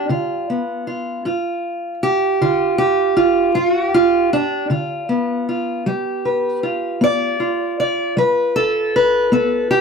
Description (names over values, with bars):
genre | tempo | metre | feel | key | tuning
acoustic country blues, solo or duo | 52 BPM (dotted quarters) | 12/8 | straight | G mixolydian | A4 = 435 Hz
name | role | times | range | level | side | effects
fingerpicked steel-string acoustic guitar | solo | 0.0-9.8 s | G2 to D5 | -16 LUFS | equal | none
room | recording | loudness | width
light reverb | none | -16 LUFS | side -5 dB against mid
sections
0.0-9.8 A section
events
none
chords
0.0 G7